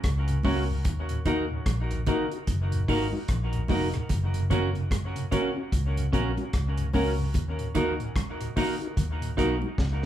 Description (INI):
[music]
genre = roots reggae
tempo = 74 BPM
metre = 4/4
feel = swing 60% on 16ths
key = unclear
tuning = A4 = 440 Hz
[part]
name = vintage muted fingered electric bass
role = bass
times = 0.0-10.1 s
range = E#1 to D#2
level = -29 LUFS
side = equal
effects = none
[part]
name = deep reggae drum kit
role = drums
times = 0.0-10.1 s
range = hi-hat, kick drum, rim click, snare drum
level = -30 LUFS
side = equal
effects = none
[part]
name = mellow tonewheel organ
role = accompaniment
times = 0.3-10.1 s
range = D#2 to F#4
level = -35 LUFS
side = left 2 dB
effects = chorus vibrato, stopped rotary speaker
[part]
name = clean electric guitar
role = accompaniment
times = 0.4-9.6 s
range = C#4 to A#4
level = -32 LUFS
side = right 4 dB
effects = dub echo
[part]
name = dark baby grand piano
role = stabs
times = 0.4-9.6 s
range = A#3 to A#4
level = -34 LUFS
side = left 3 dB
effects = dub echo
[part]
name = congas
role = percussion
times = 0.4-9.8 s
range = none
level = -37 LUFS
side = right 4 dB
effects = none
[sound]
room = moderate large studio reverb, RT60 0.8 s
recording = band playing live in one room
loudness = -24 LUFS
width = side -11 dB against mid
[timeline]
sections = 0.0-10.1 A section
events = drum fill 9.8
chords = 0.0 F#; 0.9 D#m; 4.1 F#; 7.3 D#m